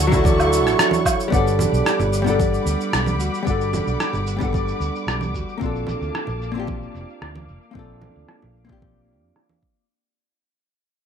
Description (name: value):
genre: sunset chillout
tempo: 112 BPM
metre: 4/4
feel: straight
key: unclear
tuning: A4 = 440 Hz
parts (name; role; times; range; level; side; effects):
- vintage hollow-body jazz guitar; accompaniment; 0.0-9.9 s; F#3 to F#5; -23 LUFS; moving between left 6 dB and right 3 dB; auto-pan, digital delay, plate reverb
- muted studio string section; sustained chords; 0.0-9.9 s; G3 to D6; -28 LUFS; left 1 dB; low-pass filter, plate reverb
- concert harp; arpeggios; 0.0-7.8 s; F4 to D5; -30 LUFS; equal; digital delay, plate reverb
- fretless electric bass; bass; 0.0-9.3 s; F1 to F2; -24 LUFS; right 1 dB; none
- electronic kick drum; drums; 0.1-9.7 s; none; -23 LUFS; right 1 dB; none
- electronic shaker, woodblock and rim click; drums; 0.1-9.9 s; none; -24 LUFS; right 1 dB; low-pass filter on perc, low-pass filter on snare, low-pass filter on room
- congas; percussion; 0.1-9.6 s; none; -29 LUFS; right 4 dB; none
room: moderate studio reverb, RT60 0.5 s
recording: rough home demo mix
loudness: -18 LUFS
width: side -7 dB against mid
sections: 0.0-1.3 A section; 1.3-9.9 B section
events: fade-out 1.3-9.9; filter sweep on drum 1.3-9.9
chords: 0.0 Dmaj7; 1.3 Gmaj7; 5.6 Bbmaj7